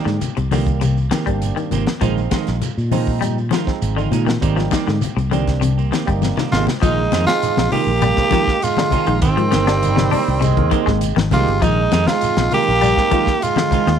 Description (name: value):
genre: afrobeat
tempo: 100 BPM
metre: 4/4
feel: straight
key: Bb mixolydian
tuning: A4 = 442 Hz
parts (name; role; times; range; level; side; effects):
- barky tine electric piano; accompaniment; 0.0-14.0 s; Eb3 to Bb4; -28 LUFS; right 11 dB; lush chorus
- electric guitar at the edge of break-up; arpeggios; 0.0-14.0 s; C3 to D4; -24 LUFS; left 9 dB; wide subtle chorus
- semi-hollow electric guitar; stabs; 0.0-13.9 s; Eb3 to G4; -25 LUFS; right 10 dB; spring reverb
- fingered electric bass; bass; 0.1-14.0 s; G1 to Bb2; -20 LUFS; equal; none
- tight funk drum kit; drums; 0.1-14.0 s; hi-hat, kick drum, snare drum; -23 LUFS; left 1 dB; none
- shekere; percussion; 0.1-13.9 s; none; -30 LUFS; right 5 dB; none
- congas; percussion; 0.2-13.9 s; none; -25 LUFS; left 11 dB; none
- raspy tenor saxophone; melody; 6.5-14.0 s; C4 to G4; -19 LUFS; equal; none
- breathy trombone; second line; 6.5-14.0 s; Eb3 to Bb3; -23 LUFS; right 12 dB; none
- bright bass trombone; second line; 9.8-11.2 s; G3 to Ab3; -24 LUFS; right 11 dB; none
room: light reverb, small room ambience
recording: 1960s-style stereo with parts hard left and right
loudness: -15 LUFS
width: side -8 dB against mid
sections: 0.0-6.8 A section; 6.8-14.0 B section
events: drum fill 5.9-6.8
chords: 0.0 Abmaj9; 2.0 Bb7sus4; 4.4 Abmaj9; 6.8 Bb7sus4; 9.2 Abmaj9; 11.6 Bb7sus4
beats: 0.22 0.82 1.42 | 2.02 2.62 3.22 3.82 | 4.42 5.02 5.62 6.22 | 6.82 7.42 8.02 8.62 | 9.22 9.82 10.42 11.02 | 11.62 12.22 12.82 13.42